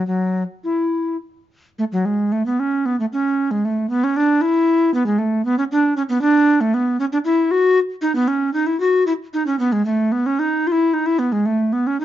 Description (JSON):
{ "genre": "classical, baroque-style fantasia for unaccompanied recorder", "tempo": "114 BPM", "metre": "3/4", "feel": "rubato", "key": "A major, E major from 8.0 s", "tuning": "A4 = 440 Hz", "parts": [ { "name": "bass recorder", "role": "solo", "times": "0.0-12.0 s", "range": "F#3 to F#4", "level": "-16 LUFS", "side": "equal", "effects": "none" } ], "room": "moderate large studio reverb, RT60 0.9 s", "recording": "dark, warm production, nothing above 7.5 kHz", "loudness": "-16 LUFS", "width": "side -12 dB against mid", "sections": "0.0-1.8 A section; 1.8-12.0 A section", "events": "none", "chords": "none", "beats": "| 0.05 0.63 1.20 | 1.77 2.32 2.85 | 3.38 3.90 4.42 | 4.94 5.45 5.96 | 6.48 7.00 7.51 | 8.03 8.55 9.08 | 9.60 10.13 10.66 | 11.19 11.73" }